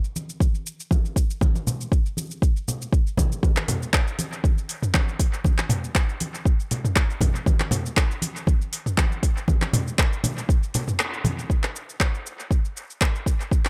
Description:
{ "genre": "house", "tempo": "119 BPM", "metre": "4/4", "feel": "swing 53% on 16ths", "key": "none", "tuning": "none", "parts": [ { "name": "deep house drum kit", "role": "drums", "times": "0.0-13.7 s", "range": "handclaps, hi-hat, shaker, toms", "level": "-29 LUFS", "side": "equal", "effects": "dub echo" }, { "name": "congas", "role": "percussion", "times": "0.2-11.4 s", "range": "none", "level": "-30 LUFS", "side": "equal", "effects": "none" }, { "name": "electronic kick drum", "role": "drums", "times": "0.4-13.6 s", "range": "none", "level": "-23 LUFS", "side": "equal", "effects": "none" } ], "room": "light reverb, digital ambience", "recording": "echo-heavy mix", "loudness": "-24 LUFS", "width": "mono", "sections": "0.0-11.5 A section; 11.5-13.7 B section", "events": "kick drops out 11.0-11.5; band accent 11.0", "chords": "none", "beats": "0.41 0.91 | 1.42 1.92 2.42 2.93 | 3.43 3.94 4.44 4.94 | 5.45 5.95 6.46 6.96 | 7.46 7.97 8.47 8.98 | 9.48 9.99 10.49 10.99 | 11.50 12.00 12.51 13.01 | 13.52" }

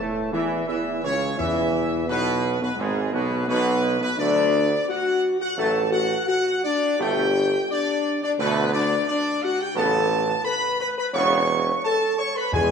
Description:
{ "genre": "classical", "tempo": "86 BPM", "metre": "4/4", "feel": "straight", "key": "A major", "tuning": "A4 = 441 Hz", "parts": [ { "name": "warm trumpet section", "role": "melody", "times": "0.0-12.7 s", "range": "G#4 to C#6", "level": "-25 LUFS", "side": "equal", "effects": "none" }, { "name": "dark French horn section", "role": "sustained chords", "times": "0.0-12.7 s", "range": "G#3 to C#5", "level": "-25 LUFS", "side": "left 4 dB", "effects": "none" }, { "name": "mellow trombone section", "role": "sustained chords", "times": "0.0-12.7 s", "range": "G#2 to B3", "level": "-29 LUFS", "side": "right 4 dB", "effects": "none" }, { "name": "clear tuba", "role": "bass", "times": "0.0-12.7 s", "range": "E1 to A2", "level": "-27 LUFS", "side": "right 4 dB", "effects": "none" }, { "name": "timpani", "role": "percussion", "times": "1.4-2.4, 12.5-12.7 s", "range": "E2", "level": "-34 LUFS", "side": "left 1 dB", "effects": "none" } ], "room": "wet concert hall reverb, RT60 2.3 s", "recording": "none", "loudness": "-20 LUFS", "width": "side -6 dB against mid", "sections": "0.0-12.7 A section", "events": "none", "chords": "0.0 A; 1.4 E; 4.2 D; 7.0 Gadd9; 9.8 Aadd9", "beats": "0.69 | 1.40 2.10 2.80 3.50 | 4.20 4.89 5.59 6.28 | 7.00 7.70 8.39 9.08 | 9.77 10.45 11.14 11.84 | 12.53" }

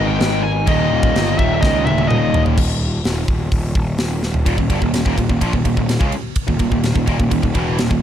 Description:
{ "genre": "heavy metal", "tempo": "126 BPM", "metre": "4/4", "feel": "straight", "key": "Eb major", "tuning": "A4 = 440 Hz", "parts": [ { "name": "high-gain lead guitar", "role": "melody", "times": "0.0-2.4 s", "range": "Eb5 to Ab5", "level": "-22 LUFS", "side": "left 2 dB", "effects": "distortion, ping-pong delay" }, { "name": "clear studio string section", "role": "sustained chords", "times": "0.0-2.5 s", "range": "Eb3 to Cb5", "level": "-31 LUFS", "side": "left 1 dB", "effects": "none" }, { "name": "crunchy overdriven guitar", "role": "riff", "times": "0.0-2.6 s", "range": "Eb2 to Eb4", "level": "-24 LUFS", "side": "equal", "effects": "none" }, { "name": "tight distorted guitar", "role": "riff", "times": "0.0-8.0 s", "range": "Eb2 to Ab3", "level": "-23 LUFS", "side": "left 10 dB", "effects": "distortion" }, { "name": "tight distorted guitar", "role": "riff", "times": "0.0-8.0 s", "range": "Eb2 to Ab3", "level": "-23 LUFS", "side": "right 12 dB", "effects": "distortion" }, { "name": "fuzz picked electric bass", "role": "bass", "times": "0.0-8.0 s", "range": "Eb1 to Db2", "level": "-20 LUFS", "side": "equal", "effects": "overdrive" }, { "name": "tight metal drum kit", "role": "drums", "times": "0.2-8.0 s", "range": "crash cymbal, hi-hat, kick drum, ride cymbal, snare drum, toms", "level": "-19 LUFS", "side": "equal", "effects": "none" } ], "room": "studio ambience", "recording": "dark, warm production", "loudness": "-15 LUFS", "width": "side -10 dB against mid", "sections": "0.0-2.6 A section; 2.6-4.5 B section; 4.5-8.0 C section", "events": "drum fill 1.6-2.6, 4.2", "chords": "0.0 Abm; 0.7 Eb; 2.6 N.C.; 4.5 Eb5", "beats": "0.20 | 0.67 1.15 1.62 2.09 | 2.57 3.04 3.52 3.99 | 4.46 4.94 5.42 5.89 | 6.37 6.84 7.32 7.79" }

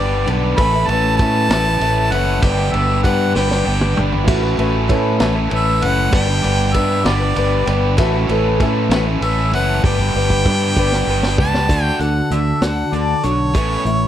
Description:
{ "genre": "folk rock and heartland rock", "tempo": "65 BPM (dotted quarters)", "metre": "6/8", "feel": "straight", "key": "D major", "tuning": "A4 = 440 Hz", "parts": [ { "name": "clear harmonica", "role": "melody", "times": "0.0-14.1 s", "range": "C#5 to B5", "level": "-20 LUFS", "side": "right 1 dB", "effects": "none" }, { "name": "picked twelve-string acoustic guitar", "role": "accompaniment", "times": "0.0-14.1 s", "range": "A2 to B4", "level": "-22 LUFS", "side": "left 7 dB", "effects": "none" }, { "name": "overdriven electric guitar", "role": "riff", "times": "0.0-14.1 s", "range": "G2 to A4", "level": "-21 LUFS", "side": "right 2 dB", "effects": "none" }, { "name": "fingered electric bass", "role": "bass", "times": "0.0-14.1 s", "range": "F#1 to A2", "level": "-19 LUFS", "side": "equal", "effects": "none" }, { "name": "vintage drum kit", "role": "drums", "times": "0.3-14.0 s", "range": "crash cymbal, hi-hat, kick drum, ride cymbal, snare drum, toms", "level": "-21 LUFS", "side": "equal", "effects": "none" }, { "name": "warm upright piano", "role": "second line", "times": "4.2-9.1 s", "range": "C#4 to A4", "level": "-23 LUFS", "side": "right 13 dB", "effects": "none" } ], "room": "studio ambience", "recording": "dry, close 1970s-style studio recording", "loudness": "-14 LUFS", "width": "side -11 dB against mid", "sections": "0.0-11.7 A section; 11.7-14.1 B section", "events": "drum fill 3.4-4.3, 9.8-11.7", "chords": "0.0 G; 0.6 Aadd9; 2.4 G; 4.3 Aadd9; 6.1 G; 8.0 Aadd9; 9.8 G; 11.7 D; 13.6 Aadd9", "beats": "| 0.58 1.50 | 2.43 3.35 | 4.28 5.21 | 6.13 7.06 | 7.98 8.91 | 9.84 10.77 | 11.69 12.62 | 13.55" }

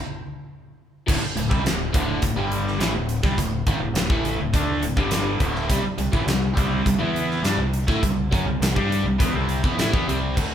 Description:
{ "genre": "classic rock", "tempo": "104 BPM", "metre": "4/4", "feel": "straight", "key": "unclear", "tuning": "A4 = 442 Hz", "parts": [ { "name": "overdriven electric guitar", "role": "riff", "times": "1.1-10.4 s", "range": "D2 to G4", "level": "-26 LUFS", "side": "left 1 dB", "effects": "phaser" }, { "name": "tight distorted guitar", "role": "riff", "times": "1.1-10.5 s", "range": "D2 to G4", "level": "-27 LUFS", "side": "right 1 dB", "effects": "distortion" }, { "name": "growling fingered electric bass", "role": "bass", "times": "1.1-10.5 s", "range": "D1 to A2", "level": "-27 LUFS", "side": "equal", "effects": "overdrive" }, { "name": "huge arena drum kit", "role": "drums", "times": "1.1-10.5 s", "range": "crash cymbal, hi-hat, kick drum, snare drum", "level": "-24 LUFS", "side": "equal", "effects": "none" } ], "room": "moderate large studio reverb, RT60 0.8 s", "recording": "band playing live in one room", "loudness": "-20 LUFS", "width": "side -9 dB against mid", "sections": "0.0-1.1 A section; 1.1-10.4 B section", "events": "stop 0.0-1.1", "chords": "0.0 N.C.; 1.1 D5; 5.7 C5", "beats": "0.50 | 1.07 1.65 2.23 2.81 | 3.39 3.97 4.55 5.13 | 5.71 6.29 6.87 7.45 | 8.03 8.61 9.20 9.78 | 10.36" }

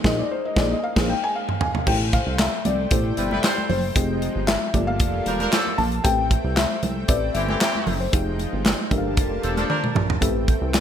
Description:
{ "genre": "early-eighties boogie funk", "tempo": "115 BPM", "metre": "4/4", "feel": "straight", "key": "A phrygian", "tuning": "A4 = 441 Hz", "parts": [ { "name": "mellow FM electric piano", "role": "accompaniment", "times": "0.0-10.7 s", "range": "B2 to F5", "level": "-29 LUFS", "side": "left 2 dB", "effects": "chorus" }, { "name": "lush unison pad", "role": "sustained chords", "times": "0.0-10.8 s", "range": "F3 to A5", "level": "-33 LUFS", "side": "right 1 dB", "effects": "chorus" }, { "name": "chorused synth bass", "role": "bass", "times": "0.0-10.8 s", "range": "E1 to C2", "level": "-26 LUFS", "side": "right 1 dB", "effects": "none" }, { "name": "modern studio drum kit", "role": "drums", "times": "0.0-10.8 s", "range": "crash cymbal, handclaps, hi-hat, kick drum, snare drum, toms", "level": "-23 LUFS", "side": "equal", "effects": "gated reverb" }, { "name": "felt-muted upright piano", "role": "melody", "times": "0.1-9.0 s", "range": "C5 to A5", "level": "-27 LUFS", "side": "left 4 dB", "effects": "ping-pong delay" }, { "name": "congas", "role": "percussion", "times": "1.9-10.8 s", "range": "none", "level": "-31 LUFS", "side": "right 3 dB", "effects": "none" }, { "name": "warm horn section", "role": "second line", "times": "3.2-10.1 s", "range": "E3 to C5", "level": "-27 LUFS", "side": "right 1 dB", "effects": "none" } ], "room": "moderate lush hall reverb, RT60 2.0 s", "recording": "bright 1980s-style digital production", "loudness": "-19 LUFS", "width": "side -9 dB against mid", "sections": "0.0-1.9 A section; 1.9-10.8 B section", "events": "band accent 0.0-1.9; felt piano solo 0.0-1.9; drum fill 0.8-1.9, 9.7-10.2", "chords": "0.0 Bb9sus4; 1.9 Am9; 4.0 Fm9; 4.7 Gm9; 6.0 Am9; 8.1 Fm9; 8.9 Gm9; 10.2 Am9", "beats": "0.31 0.83 1.35 | 1.87 2.39 2.91 3.44 | 3.96 4.48 5.00 5.52 | 6.04 6.57 7.09 7.61 | 8.13 8.65 9.18 9.70 | 10.22 10.74" }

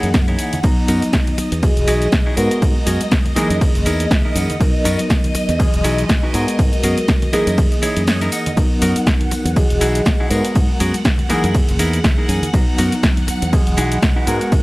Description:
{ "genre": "filtered disco house", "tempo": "121 BPM", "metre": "4/4", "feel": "swing 56% on 16ths", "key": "B major", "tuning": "A4 = 438 Hz", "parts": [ { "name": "overdriven reed electric piano", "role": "accompaniment", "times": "0.0-14.6 s", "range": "E3 to A#5", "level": "-22 LUFS", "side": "equal", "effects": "fast tremolo, phaser, sidechain pumping" }, { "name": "phased string machine", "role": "sustained chords", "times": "0.0-14.6 s", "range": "D#5 to F#5", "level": "-27 LUFS", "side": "equal", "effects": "ensemble chorus, phaser, sidechain pumping" }, { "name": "clean electric guitar", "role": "riff", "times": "0.0-14.6 s", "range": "B3 to G#5", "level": "-23 LUFS", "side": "equal", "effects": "sidechain pumping" }, { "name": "modern bright fingered electric bass", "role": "bass", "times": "0.0-14.6 s", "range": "E1 to G#2", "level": "-21 LUFS", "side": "equal", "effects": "sidechain pumping" }, { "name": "house drum kit", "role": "drums", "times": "0.0-14.6 s", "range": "hi-hat, ride cymbal, shaker, snare drum", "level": "-23 LUFS", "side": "equal", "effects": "sidechain pumping on cymbals, sidechain pumping on perc, sidechain pumping on hats" }, { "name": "tambourine and congas", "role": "percussion", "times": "0.0-14.6 s", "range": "none", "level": "-31 LUFS", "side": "left 1 dB", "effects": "none" }, { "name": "electronic kick drum", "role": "drums", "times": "0.1-14.6 s", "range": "none", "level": "-17 LUFS", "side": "equal", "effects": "none" } ], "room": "digital ambience", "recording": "dry, gritty hardware recording", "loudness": "-14 LUFS", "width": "side -20 dB against mid", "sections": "0.0-14.6 A section", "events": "clean electric guitar fill 3.6-4.6, 7.8-8.6, 11.8-12.5; kick drops out 8.1-8.6", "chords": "0.0 F#13; 0.6 Bmaj7; 1.6 Emaj9; 2.4 G#m9; 3.4 F#13; 4.6 Bmaj7; 5.6 Emaj9; 6.3 G#m9; 7.3 F#13; 8.6 Bmaj7; 9.6 Emaj9; 10.3 G#m9; 11.3 F#13; 12.5 Bmaj7; 13.5 Emaj9", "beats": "0.14 | 0.64 1.13 1.63 2.12 | 2.62 3.12 3.61 4.11 | 4.60 5.10 5.60 6.09 | 6.59 7.08 7.58 8.07 | 8.57 9.07 9.56 10.06 | 10.55 11.05 11.55 12.04 | 12.54 13.03 13.53 14.03 | 14.52" }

